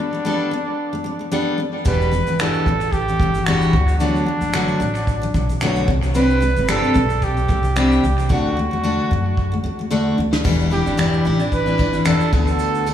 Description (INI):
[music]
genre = acoustic pop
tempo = 112 BPM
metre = 4/4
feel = swing 55% on 16ths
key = unclear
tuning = A4 = 440 Hz
[part]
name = breathy trumpet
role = melody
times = 0.0-12.9 s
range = D4 to B4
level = -23 LUFS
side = right 2 dB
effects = tape echo
[part]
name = picked steel-string acoustic guitar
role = accompaniment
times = 0.0-12.9 s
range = E2 to A4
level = -20 LUFS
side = left 2 dB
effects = tape echo
[part]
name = upright bass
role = bass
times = 1.9-12.9 s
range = E1 to F#2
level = -22 LUFS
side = equal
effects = none
[part]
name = soft brush drum kit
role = drums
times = 1.9-12.9 s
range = crash cymbal, finger snaps, kick drum, shaker, snare drum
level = -24 LUFS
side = equal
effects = tape echo
[part]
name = tambourine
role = percussion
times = 10.4-12.9 s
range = none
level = -39 LUFS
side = right 12 dB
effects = none
[sound]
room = light reverb, small room ambience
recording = echo-heavy mix, studio reverb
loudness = -16 LUFS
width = side -10 dB against mid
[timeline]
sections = 0.0-10.4 A section; 10.4-12.9 B section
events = drum fill 8.3-10.4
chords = 0.0 Gadd9; 1.9 Em7; 3.7 D6; 5.9 Csus2; 8.3 D; 10.4 Em7; 12.3 D6